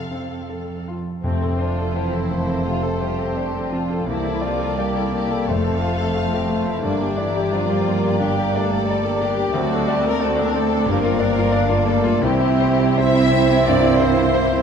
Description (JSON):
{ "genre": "classical", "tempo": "87 BPM", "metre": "4/4", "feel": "uneven beats, rubato", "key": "F major", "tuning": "A4 = 441 Hz", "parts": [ { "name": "clear grand piano", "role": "melody", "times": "0.0-14.6 s", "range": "C2 to F5", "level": "-24 LUFS", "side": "left 3 dB", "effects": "none" }, { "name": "warm symphonic violin section", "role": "melody", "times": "0.0-14.6 s", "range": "C5 to F5", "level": "-34 LUFS", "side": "left 7 dB", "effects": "none" }, { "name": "clear symphonic violin section", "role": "second line", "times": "0.0-14.6 s", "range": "C4 to E5", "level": "-27 LUFS", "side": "left 4 dB", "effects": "none" }, { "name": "rich symphonic viola section", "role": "accompaniment", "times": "0.0-14.6 s", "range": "G3 to Bb4", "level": "-30 LUFS", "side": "right 1 dB", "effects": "none" }, { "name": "warm symphonic cello section", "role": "bass", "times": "0.0-14.6 s", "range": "C2 to C3", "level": "-26 LUFS", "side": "right 4 dB", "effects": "none" }, { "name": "dark cor anglais", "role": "second line", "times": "1.2-14.6 s", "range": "C5 to D5", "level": "-29 LUFS", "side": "right 3 dB", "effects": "none" }, { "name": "mellow clarinet", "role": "second line", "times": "1.2-14.6 s", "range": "G3 to C4", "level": "-29 LUFS", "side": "right 3 dB", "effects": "none" }, { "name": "mellow hollow flute section", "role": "second line", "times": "1.2-14.6 s", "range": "E5 to Bb5", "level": "-30 LUFS", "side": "left 4 dB", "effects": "none" }, { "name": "warm bassoon", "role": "accompaniment", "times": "1.2-14.6 s", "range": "G3 to E4", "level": "-29 LUFS", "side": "right 2 dB", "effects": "none" }, { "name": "mellow French horn section", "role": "sustained chords", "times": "1.2-14.6 s", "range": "C3 to E4", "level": "-28 LUFS", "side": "left 3 dB", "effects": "none" }, { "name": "mellow trombone section", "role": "sustained chords", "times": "1.2-14.6 s", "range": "C3 to C4", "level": "-29 LUFS", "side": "right 8 dB", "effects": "none" }, { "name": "rich symphonic double bass section", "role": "bass", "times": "1.2-14.6 s", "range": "F1 to D2", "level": "-28 LUFS", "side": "right 4 dB", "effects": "none" }, { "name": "timpani", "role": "percussion", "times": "1.2-6.5 s", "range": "F2", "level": "-28 LUFS", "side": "left 1 dB", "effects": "none" } ], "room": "moderate concert hall reverb, RT60 2.0 s", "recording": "dark, warm production", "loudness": "-17 LUFS", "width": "side -7 dB against mid", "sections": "0.0-1.2 A section; 1.2-14.6 A section", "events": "none", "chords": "0.0 F; 4.1 C13; 5.5 F; 6.8 Gm; 9.5 D7; 10.9 Gm7; 12.2 C" }